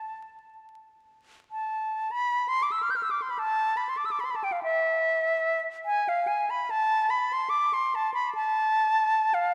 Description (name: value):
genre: classical, free, expressive piece for unaccompanied flute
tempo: 48 BPM (dotted quarters)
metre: 6/8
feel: uneven beats, rubato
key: A minor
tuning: A4 = 439 Hz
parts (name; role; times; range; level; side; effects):
- bright concert flute; solo; 0.0-9.5 s; E5 to G6; -27 LUFS; equal; none
room: wet church reverb, RT60 2.8 s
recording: vinyl crackle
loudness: -27 LUFS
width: mono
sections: 0.0-2.1 A section; 2.1-9.5 A section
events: none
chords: none